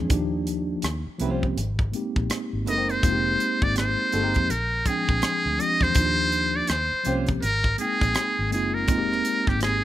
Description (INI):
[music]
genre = R&B, neo-soul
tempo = 82 BPM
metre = 4/4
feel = swing 62% on 16ths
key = unclear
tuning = A4 = 439 Hz
[part]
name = mellow tine electric piano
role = accompaniment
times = 0.0-9.8 s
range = F3 to G5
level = -28 LUFS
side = equal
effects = medium stereo tremolo
[part]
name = vintage muted fingered electric bass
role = bass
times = 0.0-9.8 s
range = F1 to F2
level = -29 LUFS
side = equal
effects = none
[part]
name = tight funk drum kit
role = drums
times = 0.1-9.8 s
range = hi-hat, kick drum, rim click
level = -26 LUFS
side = equal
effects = none
[part]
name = flamenco guitar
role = second line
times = 0.8-9.7 s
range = G3 to C5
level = -33 LUFS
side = right 4 dB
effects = none
[part]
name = trumpet with metal mute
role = melody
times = 2.7-9.8 s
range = G4 to Eb5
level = -24 LUFS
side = equal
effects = none
[sound]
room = small room ambience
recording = rough home demo mix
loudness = -21 LUFS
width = side -13 dB against mid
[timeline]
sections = 0.0-9.8 A section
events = none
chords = 0.1 Ebmaj7; 0.8 Eb13; 1.6 Abmaj9; 3.0 Fm11; 4.5 Bb13; 6.0 Ebmaj7; 6.7 Eb13; 7.4 Abmaj9; 8.9 Fm11